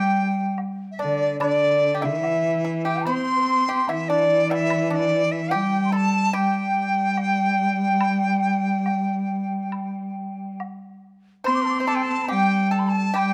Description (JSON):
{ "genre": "chinese traditional, Chinese chamber ensemble", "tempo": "72 BPM", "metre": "4/4", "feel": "rubato", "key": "G zhi mode", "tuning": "A4 = 438 Hz", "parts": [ { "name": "dizi", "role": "melody", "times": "0.0-13.3 s", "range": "D5 to C6", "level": "-26 LUFS", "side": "equal", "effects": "none" }, { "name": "mellow xiao", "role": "second line", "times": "0.0-13.3 s", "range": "D5 to D6", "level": "-29 LUFS", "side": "equal", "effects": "none" }, { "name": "pipa", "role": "second line", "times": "0.0-13.3 s", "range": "D4 to C5", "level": "-32 LUFS", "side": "equal", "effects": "none" }, { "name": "rich cello", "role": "second line", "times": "0.0-13.3 s", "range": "D3 to C4", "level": "-27 LUFS", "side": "equal", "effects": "none" }, { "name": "woodblock", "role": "percussion", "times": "0.6-13.3 s", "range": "none", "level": "-37 LUFS", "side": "equal", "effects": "none" } ], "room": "moderate recital hall reverb, RT60 1.6 s", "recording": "close, detailed microphones", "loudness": "-22 LUFS", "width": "mono", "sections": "0.0-11.5 A section; 11.5-13.3 B section", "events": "none", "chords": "none" }